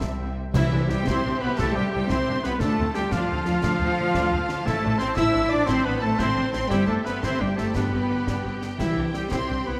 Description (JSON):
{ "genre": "cinematic, heroic adventure film score", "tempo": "116 BPM (dotted quarters)", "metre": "12/8", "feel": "straight", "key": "C major", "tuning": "A4 = 441 Hz", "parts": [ { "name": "rich symphonic violin section", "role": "melody", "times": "0.0-9.8 s", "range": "E5 to E6", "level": "-38 LUFS", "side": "equal", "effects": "none" }, { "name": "concert flute", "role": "second line", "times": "0.0-9.8 s", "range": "E5 to E6", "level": "-37 LUFS", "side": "equal", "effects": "none" }, { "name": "warm oboe", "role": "second line", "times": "0.0-9.8 s", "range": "E4 to E5", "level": "-36 LUFS", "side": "equal", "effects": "none" }, { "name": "warm symphonic violin section", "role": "second line", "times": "0.0-9.8 s", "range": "A4 to A5", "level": "-39 LUFS", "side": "equal", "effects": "none" }, { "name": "clear symphonic viola section", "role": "accompaniment", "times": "0.0-9.8 s", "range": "G3 to G4", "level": "-35 LUFS", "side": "equal", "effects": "none" }, { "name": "dark French horn section", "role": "sustained chords", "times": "0.0-9.8 s", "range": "E3 to E4", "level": "-30 LUFS", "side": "equal", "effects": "none" }, { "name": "mellow trumpet", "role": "stabs", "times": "0.0-9.8 s", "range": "E4 to E5", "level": "-35 LUFS", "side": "equal", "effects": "none" }, { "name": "rich symphonic cello section", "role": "bass", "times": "0.0-9.7 s", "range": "C3 to E4", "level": "-32 LUFS", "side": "equal", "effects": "none" }, { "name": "rich symphonic double bass section", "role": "bass", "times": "0.0-9.7 s", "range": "G1 to D2", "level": "-33 LUFS", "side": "equal", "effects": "none" }, { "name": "concert snare drum, concert bass drum and clash cymbals", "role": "drums", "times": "0.0-9.5 s", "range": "none", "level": "-35 LUFS", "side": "equal", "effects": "none" }, { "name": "timpani", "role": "percussion", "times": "0.5-1.0, 7.7-9.3 s", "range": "G2 to C3", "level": "-31 LUFS", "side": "equal", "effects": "none" } ], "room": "wet scoring stage reverb, RT60 1.9 s", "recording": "none", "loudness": "-24 LUFS", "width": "mono", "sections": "0.5-9.8 A section", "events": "none", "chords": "0.0 C; 2.6 Dm; 4.7 Am; 6.7 C/G; 7.7 G; 8.8 C" }